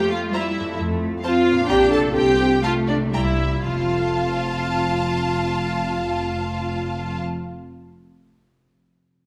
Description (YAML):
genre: cinematic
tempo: 114-136 BPM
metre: 3/4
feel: straight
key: F major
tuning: A4 = 440 Hz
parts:
  - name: warm studio violin section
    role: melody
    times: 0.0-7.2 s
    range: D5 to A5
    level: -32 LUFS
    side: equal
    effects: none
  - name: rich studio viola section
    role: accompaniment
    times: 0.0-7.2 s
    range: D4 to A4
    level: -25 LUFS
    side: equal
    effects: none
  - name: concert harp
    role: arpeggios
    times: 0.0-7.5 s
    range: F2 to C5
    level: -31 LUFS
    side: equal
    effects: none
  - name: warm studio cello section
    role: bass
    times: 0.0-7.2 s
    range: F2 to D4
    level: -28 LUFS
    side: equal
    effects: none
  - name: rich studio violin section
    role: second line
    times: 0.3-7.2 s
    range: C5 to Bb5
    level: -32 LUFS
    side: equal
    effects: none
  - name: rich studio double bass section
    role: bass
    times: 0.8-7.2 s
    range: F1 to F2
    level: -31 LUFS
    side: equal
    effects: none
room: wet recital hall reverb, RT60 1.5 s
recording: none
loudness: -21 LUFS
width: mono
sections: 0.0-3.7 A section; 3.7-6.8 B section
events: slowing down 0.1-3.7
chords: 0.0 C7/F; 0.8 F; 1.7 Bb; 2.2 F/C; 3.1 C7; 3.7 F